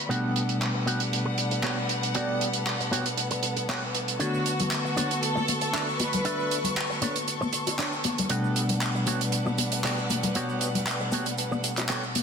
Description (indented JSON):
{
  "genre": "nu-disco, nu disco",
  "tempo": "117 BPM",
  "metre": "4/4",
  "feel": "straight",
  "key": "unclear",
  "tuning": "A4 = 440 Hz",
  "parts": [
    { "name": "tine electric piano", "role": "accompaniment", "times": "0.0-12.2 s", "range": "B2 to F#5", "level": "-31 LUFS", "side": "equal", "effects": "medium tremolo" },
    { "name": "rich studio violin section", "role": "sustained chords", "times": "0.0-12.2 s", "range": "G3 to C#6", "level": "-33 LUFS", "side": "left 2 dB", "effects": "low-pass filter" },
    { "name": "electric guitar with an envelope filter", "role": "riff", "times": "0.1-12.2 s", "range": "B3 to E5", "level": "-33 LUFS", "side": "right 1 dB", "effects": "wide subtle chorus, dub echo" },
    { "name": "damped 70s drum kit", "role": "drums", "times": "0.1-12.2 s", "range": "handclaps, hi-hat", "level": "-29 LUFS", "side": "right 3 dB", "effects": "low-pass filter on hats, low-pass filter on snare, low-pass filter on room" },
    { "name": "warm studio violin section", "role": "melody", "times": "4.2-7.0 s", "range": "F#4 to B4", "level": "-31 LUFS", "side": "equal", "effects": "digital delay" },
    { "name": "tube shaker, congas and bongos", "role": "percussion", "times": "4.2-12.2 s", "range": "none", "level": "-33 LUFS", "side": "left 3 dB", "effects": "none" }
  ],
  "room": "moderate echo chamber reverb, RT60 1.8 s, small room ambience",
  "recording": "dense, heavily limited modern master",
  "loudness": "-24 LUFS",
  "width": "side -6 dB against mid",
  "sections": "0.0-12.2 A section",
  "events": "none",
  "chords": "0.1 Gmaj9/B; 4.2 Bm9; 8.3 Gmaj9/B"
}